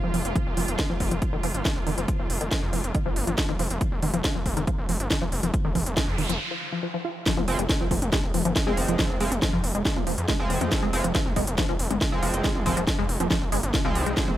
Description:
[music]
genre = driving peak-time techno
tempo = 139 BPM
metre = 4/4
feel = straight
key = F minor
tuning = A4 = 436 Hz
[part]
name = tight sequenced synth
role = riff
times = 0.0-14.3 s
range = Eb3 to F4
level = -30 LUFS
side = equal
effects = chorus, sidechain pumping, dub echo
[part]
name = gritty driven synth bass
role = bass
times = 0.0-14.4 s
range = F1 to F2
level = -29 LUFS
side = equal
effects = distortion, tube saturation, sidechain pumping
[part]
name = swarming drone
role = drone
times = 0.0-6.4 s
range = F3 to F4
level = -37 LUFS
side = right 1 dB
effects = built-in reverb, phaser, sidechain pumping
[part]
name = techno drum kit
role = drums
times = 0.1-14.4 s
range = hi-hat, snare drum, toms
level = -28 LUFS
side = equal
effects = overdrive, sidechain pumping on hats, sidechain pumping on toms
[part]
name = electronic kick drum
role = drums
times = 0.4-14.3 s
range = none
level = -27 LUFS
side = equal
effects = overdrive
[part]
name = noise sweep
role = sound effects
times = 5.8-7.3 s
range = none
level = -34 LUFS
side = right 2 dB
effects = none
[part]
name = sync-sweep polysynth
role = stabs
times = 7.5-14.4 s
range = F3 to C4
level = -31 LUFS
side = right 2 dB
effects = chorus, vintage 12-bit sampler grit, sidechain pumping, tape echo
[sound]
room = little or no reverb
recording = none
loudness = -23 LUFS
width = side -13 dB against mid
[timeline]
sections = 0.0-7.3 A section; 7.3-14.4 B section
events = noise sweep 5.8-7.3; break 6.4-7.3; drop 7.3-14.4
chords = 0.0 N.C.; 7.3 Fm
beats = | 0.36 0.79 1.22 1.65 | 2.08 2.52 2.95 3.38 | 3.81 4.24 4.67 5.11 | 5.54 5.97 6.40 6.83 | 7.26 7.70 8.13 8.56 | 8.99 9.42 9.85 10.29 | 10.72 11.15 11.58 12.01 | 12.44 12.87 13.31 13.74 | 14.17

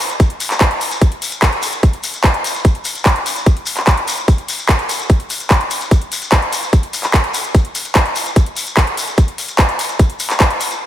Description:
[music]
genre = trance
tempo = 147 BPM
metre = 4/4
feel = straight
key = none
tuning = none
[part]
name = shekere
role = percussion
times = 0.0-10.8 s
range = none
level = -25 LUFS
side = left 3 dB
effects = none
[part]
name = garage drum kit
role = drums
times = 0.1-10.8 s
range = handclaps, hi-hat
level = -17 LUFS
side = equal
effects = small room ambience
[part]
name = electronic kick drum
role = drums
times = 0.2-10.5 s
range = none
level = -11 LUFS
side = equal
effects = small room ambience
[sound]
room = moderate lush hall reverb, RT60 2.0 s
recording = dreamy mix soaked in reverb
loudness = -13 LUFS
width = side -12 dB against mid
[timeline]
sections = 0.0-10.9 A section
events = none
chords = none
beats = | 0.20 0.61 1.01 1.42 | 1.83 2.24 2.65 3.06 | 3.46 3.87 4.28 4.69 | 5.10 5.50 5.91 6.32 | 6.73 7.14 7.55 7.95 | 8.36 8.77 9.18 9.59 | 9.99 10.40

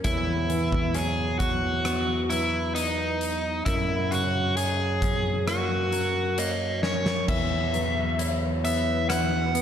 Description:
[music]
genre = post-rock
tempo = 66 BPM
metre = 4/4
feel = straight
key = E lydian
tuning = A4 = 440 Hz
[part]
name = biting overdriven guitar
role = melody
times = 0.0-9.6 s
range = D#4 to F#5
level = -27 LUFS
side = equal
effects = slapback echo
[part]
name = semi-hollow electric guitar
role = arpeggios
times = 0.0-9.6 s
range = F#2 to E4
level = -34 LUFS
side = left 3 dB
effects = spring reverb, slapback echo
[part]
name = vibraphone with medium mallets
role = arpeggios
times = 0.0-9.6 s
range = A#4 to C#5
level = -35 LUFS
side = moving between right 3 dB and right 11 dB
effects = auto-pan, slapback echo
[part]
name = growling fingered electric bass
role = bass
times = 0.0-9.6 s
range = E2 to F#2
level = -29 LUFS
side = equal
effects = overdrive
[part]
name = huge arena drum kit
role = drums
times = 0.0-9.6 s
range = crash cymbal, hi-hat, kick drum, rim click, snare drum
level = -30 LUFS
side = equal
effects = none
[part]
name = glassy FM pad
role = sustained chords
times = 8.2-9.6 s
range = E3 to B4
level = -33 LUFS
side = left 4 dB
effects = ensemble chorus, built-in reverb
[sound]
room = light reverb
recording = dark, warm production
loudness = -23 LUFS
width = side -8 dB against mid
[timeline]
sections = 0.0-7.3 A section; 7.3-9.6 B section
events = drum fill 6.8-7.3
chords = 0.0 Esus2; 3.7 F#; 7.3 Esus2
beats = | 0.05 0.95 1.85 2.76 | 3.66 4.57 5.47 6.38 | 7.28 8.19 9.09

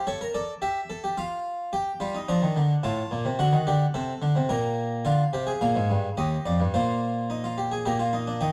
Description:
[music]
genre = classical, baroque-style 3-part fugue for harpsichord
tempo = 108 BPM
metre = 3/4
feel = straight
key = G minor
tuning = A4 = 440 Hz
[part]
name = harpsichord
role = solo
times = 0.0-8.5 s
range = Eb2 to Bb5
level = -26 LUFS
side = equal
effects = none
[sound]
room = moderate stone room reverb, RT60 1.0 s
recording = dark, warm production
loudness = -26 LUFS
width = mono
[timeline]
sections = 0.0-5.1 A section; 5.1-8.4 B section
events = none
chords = 0.1 A7; 1.2 N.C.; 1.7 Gm; 2.8 Fadd11/A; 3.4 D7; 4.5 Gm/Bb; 5.1 Bb; 6.2 Ebmaj9; 6.7 Eb/Bb; 7.9 Bb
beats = | 0.08 0.63 1.18 | 1.74 2.29 2.84 | 3.39 3.95 4.50 | 5.06 5.61 6.17 | 6.73 7.30 7.86 | 8.42

